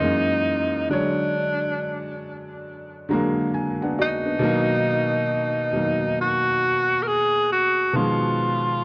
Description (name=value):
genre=hip hop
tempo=68 BPM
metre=4/4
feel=swing 62% on 16ths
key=unclear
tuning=A4 = 442 Hz
part: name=breathy tenor saxophone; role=melody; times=0.0-8.8 s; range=D4 to A#4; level=-25 LUFS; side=equal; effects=low-pass filter, analog delay
part: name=felt-muted upright piano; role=accompaniment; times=0.0-8.8 s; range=F#2 to A#5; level=-27 LUFS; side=equal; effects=cassette tape, low-pass filter
room=moderate plate reverb, RT60 2.8 s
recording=nothing above 7.8 kHz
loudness=-22 LUFS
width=mono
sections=0.0-8.8 A section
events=none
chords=0.0 F#7; 0.9 Dmaj7#11; 4.4 Bmaj7; 8.0 B(#11)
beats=0.01 | 0.89 1.77 2.66 3.54 | 4.42 5.30 6.19 7.07 | 7.95 8.83